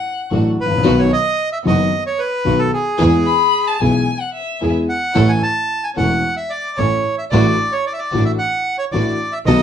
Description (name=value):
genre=tango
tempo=112 BPM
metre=4/4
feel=rubato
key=unclear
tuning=A4 = 441 Hz
part: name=dark violin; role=second line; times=0.0-4.7 s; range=E5 to B5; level=-19 LUFS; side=left 8 dB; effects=none
part: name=warm grand piano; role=accompaniment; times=0.3-9.6 s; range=E1 to A4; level=-17 LUFS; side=left 2 dB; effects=none
part: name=warm chamber string section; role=stabs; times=0.3-9.6 s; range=A3 to A4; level=-26 LUFS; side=right 2 dB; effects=none
part: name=warm double bass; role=bass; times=0.3-9.6 s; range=E1 to E2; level=-19 LUFS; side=right 2 dB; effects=none
part: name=bandoneon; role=melody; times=0.6-9.6 s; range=G#4 to A5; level=-19 LUFS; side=right 2 dB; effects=none
room=light reverb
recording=nothing above 10.7 kHz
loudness=-15 LUFS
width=side -8 dB against mid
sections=0.0-9.6 A section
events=none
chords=0.0 D; 0.9 B; 3.0 E; 5.2 A; 7.3 Dadd9/A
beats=0.32 | 0.85 1.39 1.92 2.46 | 3.00 3.54 4.08 4.62 | 5.17 5.71 6.25 6.79 | 7.33 7.87 8.40 8.94 | 9.47